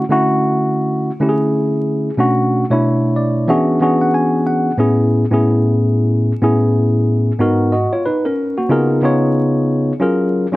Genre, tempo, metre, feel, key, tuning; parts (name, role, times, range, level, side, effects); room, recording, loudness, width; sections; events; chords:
hip hop; 92 BPM; 4/4; swing 62% on 16ths; A4 = 440 Hz
mellow tine electric piano; solo; 0.0-10.6 s; G#2 to G#5; -13 LUFS; equal
light reverb; dark, warm production, vinyl crackle; -13 LUFS; side -18 dB against mid
0.0-10.6 A section
tine electric piano fill 2.8-4.8
0.0 Dmaj9; 2.2 Bm9; 3.5 E13; 4.8 Amaj7; 7.4 G#m9; 8.7 C#13; 10.0 F#maj9